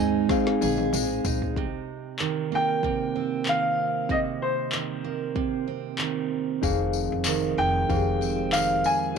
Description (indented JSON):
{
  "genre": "acoustic pop",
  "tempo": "95 BPM",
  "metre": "4/4",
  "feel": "swing 55% on 16ths",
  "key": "unclear",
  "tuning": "A4 = 440 Hz",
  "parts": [
    { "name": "clear upright piano", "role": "melody", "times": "0.0-9.2 s", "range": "C5 to Ab5", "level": "-26 LUFS", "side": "left 1 dB", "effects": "slapback echo" },
    { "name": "picked steel-string acoustic guitar", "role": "accompaniment", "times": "0.0-9.2 s", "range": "F2 to Ab4", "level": "-27 LUFS", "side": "right 9 dB", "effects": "none" },
    { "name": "reed electric piano", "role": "accompaniment", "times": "0.0-1.6, 6.6-9.2 s", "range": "C4 to F5", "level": "-29 LUFS", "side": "left 15 dB", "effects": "overdrive, fast tremolo" },
    { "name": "upright bass", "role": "bass", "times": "0.0-1.5, 6.6-8.8 s", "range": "F1 to Eb2", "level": "-32 LUFS", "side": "left 2 dB", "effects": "none" },
    { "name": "deep house drum kit", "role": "drums", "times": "0.3-8.7 s", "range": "handclaps, kick drum, snare drum, toms", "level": "-31 LUFS", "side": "left 2 dB", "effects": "none" },
    { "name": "tambourine", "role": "percussion", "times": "0.3-1.4, 6.6-9.2 s", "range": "none", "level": "-35 LUFS", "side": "left 21 dB", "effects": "none" }
  ],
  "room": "wet spring reverb, RT60 2.4 s",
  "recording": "1960s-style stereo with parts hard left and right",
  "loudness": "-23 LUFS",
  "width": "side -6 dB against mid",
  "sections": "0.0-1.6 A section; 1.6-9.2 B section",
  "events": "drum fill 0.3-1.6",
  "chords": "0.0 Ab; 1.6 Cm7; 6.6 Fm7"
}